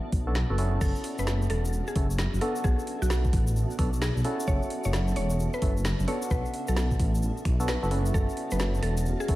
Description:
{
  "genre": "UK garage, two-step garage",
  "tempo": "131 BPM",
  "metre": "4/4",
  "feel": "swing 64% on 16ths",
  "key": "F# minor",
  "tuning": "A4 = 439 Hz",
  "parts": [
    { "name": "percussive organ stab", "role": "stabs", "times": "0.0-9.4 s", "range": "B3 to A4", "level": "-34 LUFS", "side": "equal", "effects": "lush chorus, diffuse ambient delay" },
    { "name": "granular cloud pad", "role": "texture", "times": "0.0-9.4 s", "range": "B3 to A5", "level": "-40 LUFS", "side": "equal", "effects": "built-in reverb, ensemble chorus, sidechain pumping" },
    { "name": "dark detuned saw bass", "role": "bass", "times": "0.1-9.4 s", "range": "E1 to B1", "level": "-27 LUFS", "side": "equal", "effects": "none" },
    { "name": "electronic kick drum", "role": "drums", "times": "0.1-9.4 s", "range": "none", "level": "-27 LUFS", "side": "equal", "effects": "overdrive" },
    { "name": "garage drum kit", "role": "drums", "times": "0.1-9.4 s", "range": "crash cymbal, finger snaps, hi-hat, snare drum", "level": "-36 LUFS", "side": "equal", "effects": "overdrive" },
    { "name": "mallet-like synth pluck", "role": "melody", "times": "0.8-9.4 s", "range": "F#4 to C#5", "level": "-36 LUFS", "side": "equal", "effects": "chorus, diffuse ambient delay" },
    { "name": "egg shaker", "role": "percussion", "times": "0.8-9.3 s", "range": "none", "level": "-43 LUFS", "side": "left 2 dB", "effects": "none" }
  ],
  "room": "light reverb",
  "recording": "vinyl crackle",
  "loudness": "-24 LUFS",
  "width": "side -16 dB against mid",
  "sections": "0.0-9.4 A section",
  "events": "none",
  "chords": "0.0 Bm7; 0.8 F#m7; 2.6 Bm7; 4.5 F#m7; 6.3 Bm7; 8.1 F#m7"
}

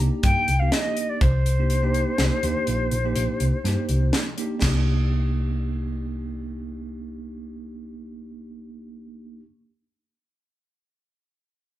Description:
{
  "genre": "progressive instrumental, band music in an uneven meter",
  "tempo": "123 BPM",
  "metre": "7/4",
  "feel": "straight",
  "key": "C minor",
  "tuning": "A4 = 440 Hz",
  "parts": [
    { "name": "bell-like tine electric piano", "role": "accompaniment", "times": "0.0-9.4 s", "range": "Bb3 to G4", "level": "-30 LUFS", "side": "right 2 dB", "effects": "fast stereo tremolo" },
    { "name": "hollow-body short-scale picked electric bass", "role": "bass", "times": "0.0-9.4 s", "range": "Bb1 to G2", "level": "-24 LUFS", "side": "equal", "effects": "none" },
    { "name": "silver concert flute", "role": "melody", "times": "0.2-4.1 s", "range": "C5 to G5", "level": "-26 LUFS", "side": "left 2 dB", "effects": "none" },
    { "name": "crisp fusion drum kit", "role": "drums", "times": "0.2-4.7 s", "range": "crash cymbal, hi-hat, kick drum, snare drum", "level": "-25 LUFS", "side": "equal", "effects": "none" }
  ],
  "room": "moderate large studio reverb, RT60 0.9 s",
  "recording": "band playing live in one room",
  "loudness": "-20 LUFS",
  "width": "side -14 dB against mid",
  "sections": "0.0-4.6 A section; 4.6-8.0 B section",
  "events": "none",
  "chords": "0.0 Cm9; 4.6 Cm7"
}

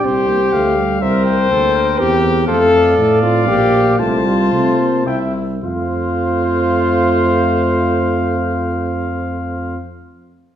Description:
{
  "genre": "classical, brass quintet",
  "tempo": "104-125 BPM",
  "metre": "3/4",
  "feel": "straight",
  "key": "F major",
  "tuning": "A4 = 440 Hz",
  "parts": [
    { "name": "warm trumpet", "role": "melody", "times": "0.0-9.8 s", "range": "E5 to A5", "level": "-23 LUFS", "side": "left 4 dB", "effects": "none" },
    { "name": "warm flugelhorn", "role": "second line", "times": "0.0-9.8 s", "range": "A4 to E5", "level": "-23 LUFS", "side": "right 4 dB", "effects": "none" },
    { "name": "dark euphonium", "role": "accompaniment", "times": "0.0-9.8 s", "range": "G3 to C4", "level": "-22 LUFS", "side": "equal", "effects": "none" },
    { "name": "warm French horn", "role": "accompaniment", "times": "0.0-9.8 s", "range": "E4 to C5", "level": "-17 LUFS", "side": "left 1 dB", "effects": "none" },
    { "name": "mellow tuba", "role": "bass", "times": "0.0-9.8 s", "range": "Bb1 to C3", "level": "-19 LUFS", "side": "right 1 dB", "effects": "none" }
  ],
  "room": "wet recital hall reverb, RT60 1.4 s",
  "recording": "recorded in a church or concert hall",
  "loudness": "-13 LUFS",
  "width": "side -10 dB against mid",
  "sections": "0.0-5.6 A section; 5.6-9.0 B section",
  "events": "slowing down 1.8-5.6",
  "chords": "0.0 G5; 1.0 C7; 2.5 F; 3.5 Bb; 4.0 F/C; 5.1 C; 5.6 F"
}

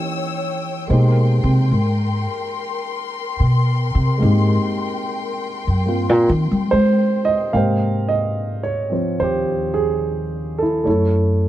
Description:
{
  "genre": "jazz ballad",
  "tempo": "72 BPM",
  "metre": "4/4",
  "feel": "swing 66% on 8ths",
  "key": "Ab major",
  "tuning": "A4 = 441 Hz",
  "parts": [
    { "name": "warm grand piano", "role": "accompaniment", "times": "0.0-11.5 s", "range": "C3 to G5", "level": "-21 LUFS", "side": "right 2 dB", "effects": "none" },
    { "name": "warm symphonic string section", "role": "sustained chords", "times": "0.0-7.5 s", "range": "Bb4 to Fb6", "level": "-26 LUFS", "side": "left 4 dB", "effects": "none" },
    { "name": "upright bass", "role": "bass", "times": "0.9-11.5 s", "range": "Eb2 to Ab3", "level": "-17 LUFS", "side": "equal", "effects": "none" }
  ],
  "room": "little or no reverb",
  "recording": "dark, warm production",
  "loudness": "-16 LUFS",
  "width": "side -13 dB against mid",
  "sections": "0.0-7.5 A section; 7.5-11.5 B section",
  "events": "upright bass solo 0.0-7.5",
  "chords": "0.0 Eb7b9; 0.9 Abmaj9; 10.9 Gbm7"
}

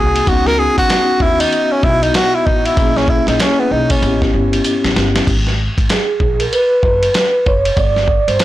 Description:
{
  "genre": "hip hop, jazz-hop",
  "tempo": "96 BPM",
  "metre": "4/4",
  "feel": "swing 61% on 16ths",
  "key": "G# minor",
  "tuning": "A4 = 441 Hz",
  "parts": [
    { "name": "warm tenor saxophone", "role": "melody", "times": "0.0-4.2 s", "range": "B3 to A#4", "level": "-15 LUFS", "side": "equal", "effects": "plate reverb, tape echo" },
    { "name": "vibraphone with soft mallets", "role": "accompaniment", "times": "0.0-8.4 s", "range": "A#3 to D5", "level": "-16 LUFS", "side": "equal", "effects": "plate reverb" },
    { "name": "upright bass", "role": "bass", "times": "0.0-8.4 s", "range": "F#1 to D#2", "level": "-20 LUFS", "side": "equal", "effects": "tube saturation" },
    { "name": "dusty soul sampler-style drum kit", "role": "drums", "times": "0.2-8.4 s", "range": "crash cymbal, hi-hat, kick drum, ride cymbal, snare drum", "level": "-17 LUFS", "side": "equal", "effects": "none" }
  ],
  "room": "moderate studio reverb, RT60 0.6 s",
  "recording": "blown-out, overdriven recording, overdrive",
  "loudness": "-12 LUFS",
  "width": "side -14 dB against mid",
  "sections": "0.0-5.3 A section; 5.3-8.4 A section",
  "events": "tenor saxophone solo 0.0-5.3; drum fill 4.6-5.3; vibraphone solo 5.3-8.4",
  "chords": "0.3 C#m11; 2.8 A#m7b5; 4.0 A9; 5.3 G#m9; 7.8 G5"
}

